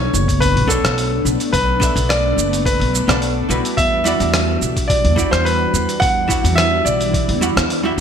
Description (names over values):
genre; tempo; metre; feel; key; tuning
sunset chillout; 107 BPM; 4/4; straight; E minor; A4 = 441 Hz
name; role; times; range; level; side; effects
warm grand piano; melody; 0.0-7.9 s; A4 to F#5; -19 LUFS; equal; digital delay
vintage hollow-body jazz guitar; accompaniment; 0.0-8.0 s; G3 to F#5; -23 LUFS; moving between left 6 dB and right 5 dB; auto-pan, digital delay
shimmering ambient pad; sustained chords; 0.0-8.0 s; E3 to F#4; -24 LUFS; left 1 dB; chorus, built-in reverb, vintage 12-bit sampler grit
upright bass; bass; 0.0-8.0 s; F#1 to E2; -20 LUFS; equal; none
dusty soul sampler-style drum kit; drums; 0.1-7.8 s; cabasa, hi-hat, rim click; -22 LUFS; right 1 dB; studio reverb, gated reverb
electronic kick drum; drums; 0.3-7.3 s; none; -21 LUFS; left 1 dB; studio reverb
room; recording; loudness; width
light reverb; bright 1980s-style digital production; -14 LUFS; side -7 dB against mid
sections
0.0-8.0 A section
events
none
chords
0.0 Bm9; 3.8 Em9